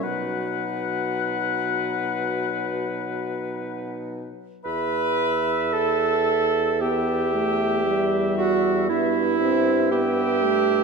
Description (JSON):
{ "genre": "classical, slow romantic movement for wind quintet", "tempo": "51-60 BPM", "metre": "4/4", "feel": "rubato", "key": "E minor", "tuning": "A4 = 439 Hz", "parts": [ { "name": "concert flute", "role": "melody", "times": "0.0-10.8 s", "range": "E5 to B5", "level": "-29 LUFS", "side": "left 9 dB", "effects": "none" }, { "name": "mellow oboe", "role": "second line", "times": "0.0-10.8 s", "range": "B4 to E5", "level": "-31 LUFS", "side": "left 4 dB", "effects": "none" }, { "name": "mellow French horn", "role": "accompaniment", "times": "0.0-10.8 s", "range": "F#3 to C4", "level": "-29 LUFS", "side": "left 2 dB", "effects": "none" }, { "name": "warm clarinet", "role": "accompaniment", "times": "0.0-10.8 s", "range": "D#4 to B4", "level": "-24 LUFS", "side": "right 9 dB", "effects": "none" }, { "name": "mellow bassoon", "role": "bass", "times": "0.0-10.8 s", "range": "E2 to B2", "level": "-28 LUFS", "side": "equal", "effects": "none" } ], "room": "wet scoring stage reverb, RT60 1.8 s", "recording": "dark, warm production", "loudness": "-21 LUFS", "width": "side -4 dB against mid", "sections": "0.0-4.6 A section; 4.6-10.8 B section", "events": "none", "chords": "0.0 B; 4.6 Em; 8.9 Em/G" }